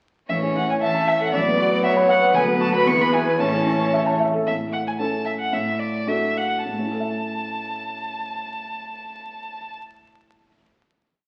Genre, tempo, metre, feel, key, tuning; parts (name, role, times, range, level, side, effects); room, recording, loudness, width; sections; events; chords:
quick classical-period movement for piano quintet; 99-119 BPM; 2/4; rubato; A major; A4 = 440 Hz
rich violin; melody; 0.3-9.7 s; D5 to C#6; -27 LUFS; equal
rich cello; second line; 0.3-4.2 s; E3 to F#3; -31 LUFS; equal
rich violin; second line; 0.3-4.2 s; B4 to E5; -25 LUFS; equal
warm concert grand piano; accompaniment; 0.3-10.6 s; A1 to B5; -26 LUFS; equal
warm viola; accompaniment; 0.3-4.2 s; B3 to C#4; -32 LUFS; equal
wet recital hall reverb, RT60 1.4 s; very old 78 rpm record, vinyl crackle; -22 LUFS; mono
0.3-4.5 A section; 4.5-6.7 coda; 6.7-9.0 final chord
slowing down 3.9-6.7
0.3 A; 1.3 Bm7/A; 2.3 Bm/D; 2.9 E; 3.4 A; 5.5 D/A; 6.7 A